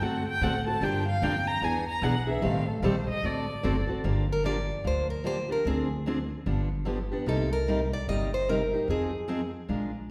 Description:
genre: acoustic string swing (jazz manouche).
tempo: 149 BPM.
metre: 4/4.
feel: swing 62% on 8ths.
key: G minor.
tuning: A4 = 440 Hz.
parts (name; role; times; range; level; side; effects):
rich violin; second line; 0.0-4.0 s; A4 to Bb5; -33 LUFS; equal; none.
picked steel-string acoustic guitar; accompaniment; 0.0-9.9 s; C3 to Bb4; -33 LUFS; equal; none.
upright bass; bass; 0.0-10.1 s; F#1 to A2; -34 LUFS; equal; none.
picked plugged-in acoustic archtop guitar; melody; 4.3-9.5 s; Ab4 to Eb5; -33 LUFS; equal; none.
room: wet recital hall reverb, RT60 1.5 s.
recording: recorded in a church or concert hall.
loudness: -28 LUFS.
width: mono.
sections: 0.0-4.0 A section; 4.0-10.1 B section.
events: violin solo 0.0-4.0.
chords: 0.0 D7; 0.8 Gm7; 1.6 E7; 2.4 Am7b5; 3.2 D7; 4.0 Gm7; 5.7 Dm7b5; 6.5 G7; 7.3 Cm7; 8.9 Fm7.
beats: 0.01 0.41 | 0.82 1.22 1.62 2.03 | 2.43 2.83 3.23 3.64 | 4.04 4.44 4.85 5.25 | 5.66 6.06 6.46 6.87 | 7.27 7.67 8.08 8.48 | 8.88 9.29 9.69 10.09.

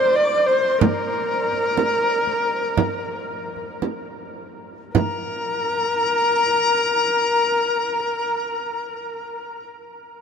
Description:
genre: mongolian traditional, Mongolian folk.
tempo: 52-65 BPM.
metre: 4/4.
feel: straight.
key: Bb gong mode.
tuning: A4 = 441 Hz.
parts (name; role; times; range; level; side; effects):
clear horsehead fiddle; melody; 0.0-9.7 s; Bb4 to D5; -22 LUFS; left 1 dB; none.
bright dizi; second line; 0.0-9.7 s; Bb5 to D6; -25 LUFS; left 2 dB; none.
frame drum; percussion; 0.8-5.5 s; none; -25 LUFS; right 5 dB; none.
room: wet huge ambient reverb, RT60 8.8 s.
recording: heard from further back in the room.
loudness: -19 LUFS.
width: side -6 dB against mid.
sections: 0.0-5.0 A section; 5.0-9.6 B section.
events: slowing down 0.0-5.0.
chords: none.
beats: | 0.80 1.76 2.77 3.83 | 4.95 6.11 7.26 8.42.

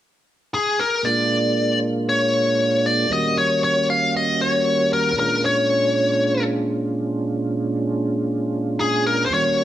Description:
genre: blues.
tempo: 116 BPM.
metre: 4/4.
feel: straight.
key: unclear.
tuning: A4 = 441 Hz.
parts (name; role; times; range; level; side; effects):
biting lead guitar; melody; 0.5-9.6 s; Ab4 to F5; -19 LUFS; left 2 dB; overdrive.
mellow tonewheel organ; accompaniment; 1.0-9.6 s; Eb2 to F#4; -22 LUFS; right 2 dB; chorus vibrato, slow rotary speaker.
room: moderate large studio reverb, RT60 1.2 s.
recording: band playing live in one room.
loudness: -18 LUFS.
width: side -12 dB against mid.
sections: 0.0-1.0 A section; 1.0-9.6 B section.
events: none.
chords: 0.0 N.C.; 1.0 Bb7#9; 3.1 Eb7#9; 5.2 Bb7#9.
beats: 0.01 0.53 | 1.05 1.56 2.08 2.60 | 3.11 3.63 4.14 4.66 | 5.18 5.69 6.21 6.72 | 7.24 7.76 8.27 8.79 | 9.30.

